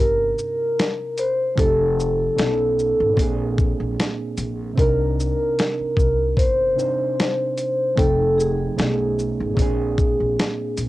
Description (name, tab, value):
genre	lo-fi hip hop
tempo	75 BPM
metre	4/4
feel	swing 56% on 16ths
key	C minor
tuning	A4 = 440 Hz
part	vibraphone with soft mallets	melody	0.0-10.7 s	Ab4 to C5	-21 LUFS	left 1 dB	cassette tape
part	overdriven reed electric piano	accompaniment	0.0-10.9 s	Bb2 to G5	-26 LUFS	right 5 dB	cassette tape
part	upright bass	bass	0.0-10.9 s	F1 to C2	-25 LUFS	left 1 dB	tube saturation
part	dusty soul sampler-style drum kit	drums	0.4-10.9 s	hi-hat, kick drum, shaker, snare drum	-21 LUFS	left 1 dB	none
room	moderate small room reverb, RT60 0.5 s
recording	home recording on cassette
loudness	-18 LUFS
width	side -17 dB against mid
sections	0.0-10.9 A section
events	none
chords	0.0 Cm9; 1.6 F9; 2.4 B9; 3.2 Bb7; 4.8 Cm9; 8.0 F9; 8.8 B9; 9.6 Bb7